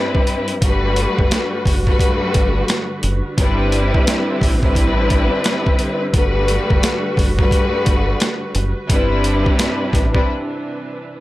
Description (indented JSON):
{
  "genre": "hip hop, boom-bap hip-hop",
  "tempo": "87 BPM",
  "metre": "4/4",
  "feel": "swing 63% on 16ths",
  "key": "G major",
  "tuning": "A4 = 440 Hz",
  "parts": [
    { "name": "warm studio string section", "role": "accompaniment", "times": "0.0-10.3 s", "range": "G2 to B4", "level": "-19 LUFS", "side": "left 1 dB", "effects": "high-pass filter, low-pass filter" },
    { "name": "boom bap sampler-style drum kit", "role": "drums", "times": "0.1-10.3 s", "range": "hi-hat, kick drum, snare drum", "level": "-17 LUFS", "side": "equal", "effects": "none" },
    { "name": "warm studio string section", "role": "sustained chords", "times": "0.6-11.2 s", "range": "C3 to B4", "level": "-27 LUFS", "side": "right 2 dB", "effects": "high-pass filter, low-pass filter" },
    { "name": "deep dub fingered electric bass", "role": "bass", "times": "0.6-10.2 s", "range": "F#1 to A1", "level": "-20 LUFS", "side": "equal", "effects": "none" }
  ],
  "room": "light reverb",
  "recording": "none",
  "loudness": "-15 LUFS",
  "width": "side -17 dB against mid",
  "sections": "0.6-11.2 A section",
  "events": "break 10.3-11.2",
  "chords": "0.0 Cmaj9/G; 0.6 Gmaj7; 3.4 Cmaj9/G; 6.1 Gmaj7; 8.9 Cmaj9/G"
}